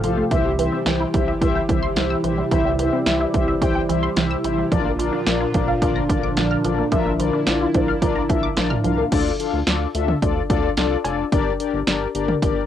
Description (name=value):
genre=synth-pop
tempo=109 BPM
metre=4/4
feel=straight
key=D minor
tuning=A4 = 441 Hz
part: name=mellow synth brass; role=accompaniment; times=0.0-12.6 s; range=D4 to G5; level=-23 LUFS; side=left 7 dB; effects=chorus, cassette tape
part: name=lush unison pad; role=sustained chords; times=0.0-9.1 s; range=Bb2 to G4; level=-24 LUFS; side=right 2 dB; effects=chorus, cassette tape
part: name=resonant blip pluck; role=arpeggios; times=0.0-9.1 s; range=E3 to F6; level=-25 LUFS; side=right 2 dB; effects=chorus, phaser, cassette tape, analog delay
part: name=rubbery square bass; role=bass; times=0.0-12.6 s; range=F1 to D2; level=-27 LUFS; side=right 1 dB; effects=none
part: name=punchy analog drum machine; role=drums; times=0.0-12.6 s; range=cowbell, crash cymbal, hi-hat, kick drum, snare drum, toms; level=-22 LUFS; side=right 1 dB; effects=cassette tape
room=wet booth ambience, RT60 0.2 s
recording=home recording on cassette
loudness=-18 LUFS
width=side -10 dB against mid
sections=0.0-9.1 A section; 9.1-12.7 B section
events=none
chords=0.3 C; 4.7 Bb; 9.1 Dm; 11.3 Gm